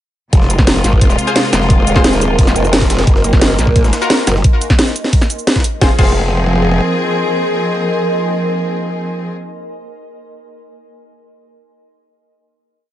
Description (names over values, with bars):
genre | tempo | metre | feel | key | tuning
dark technical drum and bass | 175 BPM | 4/4 | straight | F phrygian | A4 = 441 Hz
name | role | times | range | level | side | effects
clear symphonic string section | sustained chords | 0.3-9.3 s | C3 to Ab4 | -18 LUFS | left 1 dB | sidechain pumping
growl bass | bass | 0.3-6.8 s | Eb1 to Bb1 | -15 LUFS | equal | chorus, tube saturation, sidechain pumping
drum and bass drum kit | drums | 0.3-6.1 s | crash cymbal, hi-hat, shaker, snare drum | -16 LUFS | equal | none
electronic kick drum | drums | 0.3-6.1 s | none | -12 LUFS | equal | overdrive
jungle sampler-style drum kit | drums | 0.3-5.7 s | hi-hat, snare drum | -26 LUFS | equal | none
granular cloud pad | texture | 1.2-9.3 s | Bb4 to C6 | -22 LUFS | right 1 dB | built-in reverb, sidechain pumping
orchestra-hit-like synth stab | stabs | 1.3-10.0 s | F4 to C5 | -21 LUFS | left 2 dB | built-in reverb, digital delay
room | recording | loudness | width
digital ambience | nothing above 10.7 kHz | -11 LUFS | side -12 dB against mid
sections
0.3-5.8 drop; 5.8-8.6 final chord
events
drop 0.3-5.8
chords
0.3 Fm; 3.1 Gbmaj7; 5.8 Fm